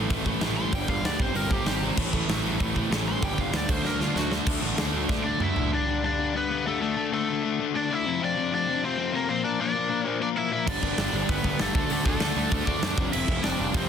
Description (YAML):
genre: punk rock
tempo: 193 BPM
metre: 4/4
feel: straight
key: unclear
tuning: A4 = 440 Hz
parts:
  - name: distorted electric guitar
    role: riff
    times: 0.0-13.9 s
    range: F2 to D4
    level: -29 LUFS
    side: left 12 dB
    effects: distortion
  - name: distorted electric guitar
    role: riff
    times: 0.0-5.7, 10.7-13.9 s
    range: F2 to D4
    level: -31 LUFS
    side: right 16 dB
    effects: distortion
  - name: fuzz picked electric bass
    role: bass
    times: 0.0-5.7, 10.7-13.8 s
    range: F1 to F#2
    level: -32 LUFS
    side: right 1 dB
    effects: overdrive
  - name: big rock drum kit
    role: drums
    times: 0.1-5.6, 10.7-13.8 s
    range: crash cymbal, hi-hat, kick drum, snare drum, toms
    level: -28 LUFS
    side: right 1 dB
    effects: none
  - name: overdriven electric guitar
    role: melody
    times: 0.6-13.9 s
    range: A3 to C6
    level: -29 LUFS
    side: equal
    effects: none
room: little or no reverb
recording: dense, heavily limited modern master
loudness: -24 LUFS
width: side -7 dB against mid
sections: 0.0-4.5 A section; 4.5-5.7 B section; 5.7-13.9 C section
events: overdriven electric guitar solo 0.0-4.5; drum fill 3.8-4.5, 5.1-5.7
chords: 0.0 A5; 0.7 G5; 1.2 C5/G; 2.0 A5; 3.2 G5; 3.7 D5; 5.7 G; 6.8 D5; 8.0 F5; 9.3 Bb; 10.7 G; 11.8 D5; 13.0 F5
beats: 0.10 0.41 | 0.72 1.04 1.35 1.66 | 1.97 2.28 2.60 2.91 | 3.22 3.53 3.84 4.16 | 4.47 4.78 5.09 5.40 | 5.71 6.03 6.34 6.65 | 6.96 7.27 7.58 7.89 | 8.20 8.51 8.82 9.13 | 9.44 9.75 10.06 10.36 | 10.67 10.98 11.29 11.60 | 11.90 12.21 12.52 12.83 | 13.13 13.44 13.75